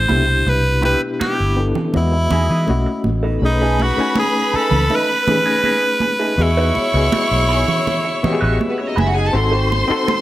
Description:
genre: lush 1970s-style soul.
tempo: 81 BPM.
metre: 4/4.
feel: straight.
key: unclear.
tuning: A4 = 440 Hz.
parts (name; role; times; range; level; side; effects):
raspy tenor saxophone; melody; 0.0-9.0 s; D#4 to C5; -19 LUFS; equal; tape echo.
overdriven reed electric piano; accompaniment; 0.0-10.2 s; B2 to G#5; -22 LUFS; left 3 dB; fast tremolo.
vintage muted fingered electric bass; bass; 0.0-9.9 s; F#1 to E3; -18 LUFS; equal; none.
electric guitar through a small old amp; riff; 0.1-10.1 s; A3 to B4; -25 LUFS; right 2 dB; wah.
congas; percussion; 0.1-10.2 s; none; -24 LUFS; right 4 dB; none.
warm studio violin section; second line; 3.4-10.2 s; B3 to C#6; -22 LUFS; equal; tape echo.
room: light reverb, small room ambience.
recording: none.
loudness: -14 LUFS.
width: side -15 dB against mid.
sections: 0.0-3.4 A section; 3.4-10.2 B section.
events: none.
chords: 0.1 Cmaj7; 1.9 Emaj7; 2.7 B7; 3.4 B13; 6.4 Emaj7; 9.3 G#7b9.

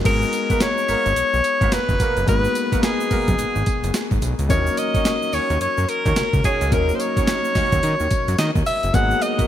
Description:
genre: R&B, new jack swing.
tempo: 108 BPM.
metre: 4/4.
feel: swing 62% on 16ths.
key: G# minor.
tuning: A4 = 440 Hz.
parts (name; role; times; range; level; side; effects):
clear concert grand piano; accompaniment; 0.0-9.5 s; E3 to B4; -26 LUFS; left 5 dB; none.
fat analog bass; bass; 0.0-9.4 s; F#1 to D#3; -23 LUFS; equal; none.
bright alto saxophone; melody; 0.1-9.5 s; G#4 to F#5; -21 LUFS; left 1 dB; ping-pong delay.
breakbeat sampler-style drum kit; drums; 0.1-9.5 s; crash cymbal, hi-hat, kick drum, snare drum, tambourine; -22 LUFS; equal; overdrive.
egg shaker; percussion; 0.1-9.5 s; none; -40 LUFS; right 9 dB; none.
mellow horn section; stabs; 0.5-9.5 s; A#3 to C#5; -30 LUFS; right 6 dB; none.
rich studio string section; sustained chords; 8.9-9.5 s; G#3 to A#5; -35 LUFS; right 2 dB; none.
room: light reverb.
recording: bright 1980s-style digital production.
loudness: -17 LUFS.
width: side -11 dB against mid.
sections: 0.1-9.5 A section.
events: none.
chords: 0.1 G#m9; 4.5 D#m7; 8.9 G#m9.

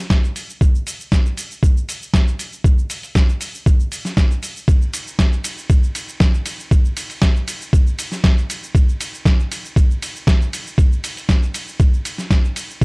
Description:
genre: nu-disco.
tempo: 118 BPM.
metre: 4/4.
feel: straight.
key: none.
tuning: none.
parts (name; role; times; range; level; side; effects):
dusty soul sampler-style drum kit; drums; 0.1-12.8 s; hi-hat, ride cymbal, shaker, snare drum; -23 LUFS; equal; studio reverb.
electronic kick drum; drums; 0.1-12.8 s; none; -13 LUFS; equal; studio reverb.
room: little or no reverb.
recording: dry, gritty hardware recording, transformer saturation.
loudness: -15 LUFS.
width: side -30 dB against mid.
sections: 0.0-12.8 A section.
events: none.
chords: none.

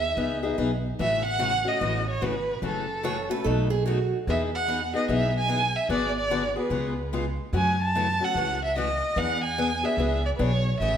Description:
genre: acoustic string swing (jazz manouche).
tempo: 147 BPM.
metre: 4/4.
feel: swing 64% on 8ths.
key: E major.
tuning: A4 = 438 Hz.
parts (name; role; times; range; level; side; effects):
warm violin; melody; 0.0-11.0 s; A4 to A5; -26 LUFS; right 1 dB; slapback echo.
upright bass; bass; 0.0-11.0 s; F#1 to F#2; -29 LUFS; equal; none.
picked steel-string acoustic guitar; accompaniment; 0.2-11.0 s; B2 to G#4; -29 LUFS; left 4 dB; none.
picked steel-string acoustic guitar; second line; 3.0-4.2 s; F#4 to C#5; -29 LUFS; right 8 dB; none.
room: wet recital hall reverb, RT60 1.7 s.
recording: none.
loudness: -23 LUFS.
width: side -8 dB against mid.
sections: 1.0-11.0 A section.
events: none.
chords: 0.0 Emaj7; 1.0 A6; 2.6 F#m7; 3.4 B7; 4.3 Emaj9; 5.9 G#m7b5; 6.7 C#7; 7.5 F#m7; 9.2 E7.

